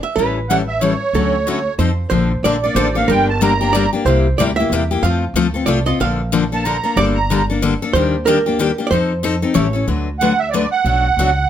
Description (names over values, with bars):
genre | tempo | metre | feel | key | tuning
acoustic string swing (jazz manouche) | 185 BPM | 3/4 | swing 60% on 8ths | Bb major | A4 = 440 Hz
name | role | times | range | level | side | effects
archtop guitar, miked and amplified | second line | 0.0-9.9 s | A4 to F5 | -21 LUFS | right 4 dB | none
picked steel-string acoustic guitar | accompaniment | 0.2-11.3 s | B2 to B4 | -18 LUFS | left 5 dB | none
upright bass | bass | 0.2-11.4 s | G1 to F2 | -20 LUFS | right 1 dB | none
musette accordion | melody | 0.5-3.9, 6.5-7.5, 10.2-11.5 s | C#5 to D6 | -18 LUFS | right 5 dB | none
room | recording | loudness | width
moderate studio reverb, RT60 0.5 s | none | -14 LUFS | side -10 dB against mid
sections
0.0-2.1 A section; 2.1-9.9 B section; 9.9-11.5 A section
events
none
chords
0.2 A7; 1.1 Dmaj7; 1.8 F7; 2.1 Bbmaj7; 3.1 Gm; 4.1 C7; 5.0 F; 6.0 Bbmaj7; 7.0 Gmadd9; 7.9 Ebmaj7; 8.9 F7; 9.6 A7; 9.9 D6; 10.9 Bm7